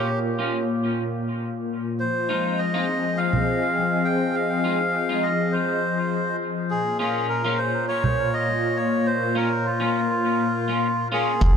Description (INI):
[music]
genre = ambient dub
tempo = 102 BPM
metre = 4/4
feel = straight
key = unclear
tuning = A4 = 440 Hz
[part]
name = melodica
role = melody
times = 0.0-11.6 s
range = F4 to G5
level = -25 LUFS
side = equal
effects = dub echo
[part]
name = warm analog pad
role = sustained chords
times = 0.0-11.6 s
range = Bb2 to Eb5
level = -24 LUFS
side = left 2 dB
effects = chorus, tremolo
[part]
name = clean electric guitar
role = stabs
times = 0.0-11.3 s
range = Ab3 to F4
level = -31 LUFS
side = equal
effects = analog chorus, low-pass filter, dub echo
[part]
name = electronic congas and hi-hat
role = drums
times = 3.3-3.4, 8.0-11.5 s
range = none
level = -26 LUFS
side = right 3 dB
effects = dub echo
[part]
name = warm sub bass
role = bass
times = 11.4-11.5 s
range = F1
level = -15 LUFS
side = equal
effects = none
[part]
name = electronic kick drum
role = drums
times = 11.4-11.5 s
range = none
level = -24 LUFS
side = right 1 dB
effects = none
[sound]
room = moderate spring reverb, RT60 2.6 s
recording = echo-heavy mix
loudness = -21 LUFS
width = side -7 dB against mid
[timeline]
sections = 0.0-11.4 A section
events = none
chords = 0.0 Bbm; 2.0 Fm7; 6.7 Bbm